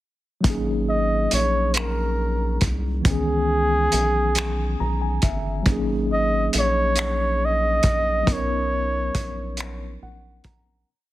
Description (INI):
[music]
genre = slow six-eight R&B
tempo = 46 BPM (dotted quarters)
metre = 6/8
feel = straight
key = unclear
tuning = A4 = 441 Hz
[part]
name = mellow tine electric piano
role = accompaniment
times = 0.4-10.9 s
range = D#3 to A#5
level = -27 LUFS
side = left 1 dB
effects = medium stereo tremolo
[part]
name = rubbery square bass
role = bass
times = 0.4-10.8 s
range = G1 to C#2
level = -25 LUFS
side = equal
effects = none
[part]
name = cloth-damped thuddy drum kit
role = drums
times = 0.4-10.6 s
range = finger snaps, hi-hat, kick drum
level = -23 LUFS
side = equal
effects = soft clipping on snare
[part]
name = breathy flugelhorn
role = melody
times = 0.9-10.0 s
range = G#4 to D#5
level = -23 LUFS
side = right 1 dB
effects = slapback echo
[sound]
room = small room reverb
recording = dense, heavily limited modern master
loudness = -20 LUFS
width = side -15 dB against mid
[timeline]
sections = 0.4-10.9 verse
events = tine electric piano fill 4.4-5.7, 9.6-10.9; fade-out 8.3-10.9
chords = 0.4 G#9sus4; 3.1 C#m9; 5.7 G#9sus4; 8.3 Bmaj9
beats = | 0.44 1.75 | 3.05 4.36 | 5.66 6.96 | 8.27 9.57